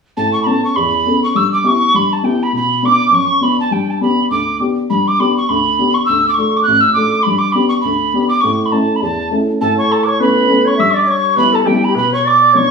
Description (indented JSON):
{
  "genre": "celtic folk",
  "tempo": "204 BPM",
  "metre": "4/4",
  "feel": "swing 58% on 8ths",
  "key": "A mixolydian",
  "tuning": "A4 = 440 Hz",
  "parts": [
    { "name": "mellow wooden whistle", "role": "melody", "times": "0.2-12.7 s", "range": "G5 to F#6", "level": "-14 LUFS", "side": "right 2 dB", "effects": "none" },
    { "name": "warm upright piano", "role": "accompaniment", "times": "0.2-12.7 s", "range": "A1 to A4", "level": "-16 LUFS", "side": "left 2 dB", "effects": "none" },
    { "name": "bright wooden flute", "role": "second line", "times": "9.6-12.7 s", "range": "G4 to E5", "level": "-17 LUFS", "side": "left 2 dB", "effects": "none" }
  ],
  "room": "wet studio reverb, RT60 0.8 s",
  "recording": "band playing live in one room, studio reverb",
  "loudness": "-11 LUFS",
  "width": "side -5 dB against mid",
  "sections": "0.2-9.6 A section; 9.6-12.7 A section",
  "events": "none",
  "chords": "0.2 Aadd9; 1.3 Em/G; 2.5 Bm; 3.7 G; 6.1 D; 7.3 G; 8.4 A; 9.6 Aadd9; 10.8 Em/G; 12.0 Bm",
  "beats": "| 0.16 0.46 0.76 1.05 | 1.35 1.64 1.94 2.24 | 2.53 2.83 3.12 3.42 | 3.71 4.01 4.30 4.60 | 4.89 5.19 5.48 5.78 | 6.07 6.37 6.66 6.96 | 7.25 7.55 7.84 8.14 | 8.43 8.72 9.02 9.31 | 9.61 9.90 10.20 10.49 | 10.78 11.07 11.37 11.66 | 11.96 12.25 12.54"
}